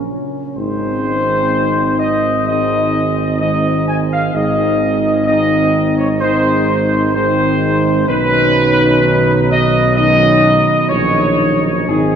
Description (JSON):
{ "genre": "classical", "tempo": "64 BPM", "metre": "4/4", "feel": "straight", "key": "Ab major", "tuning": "A4 = 440 Hz", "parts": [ { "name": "dark French horn section", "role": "sustained chords", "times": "0.0-12.2 s", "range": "C4 to Eb4", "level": "-18 LUFS", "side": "left 2 dB", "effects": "none" }, { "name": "mellow trombone section", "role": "sustained chords", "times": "0.0-12.2 s", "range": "Db3 to Ab3", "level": "-20 LUFS", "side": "right 2 dB", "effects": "none" }, { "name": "warm tuba", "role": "bass", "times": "0.0-12.2 s", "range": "Ab1 to B1", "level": "-19 LUFS", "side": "right 2 dB", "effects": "none" }, { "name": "mellow trumpet section", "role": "melody", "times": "0.6-12.2 s", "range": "Ab4 to Ab5", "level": "-15 LUFS", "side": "equal", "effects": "none" } ], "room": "wet cathedral reverb, RT60 5.7 s", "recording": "dark, warm production, nothing above 10.8 kHz", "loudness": "-12 LUFS", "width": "side -8 dB against mid", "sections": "0.0-12.2 A section", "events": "none", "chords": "0.0 Gb/Bb; 0.6 Ab; 8.1 Badd9" }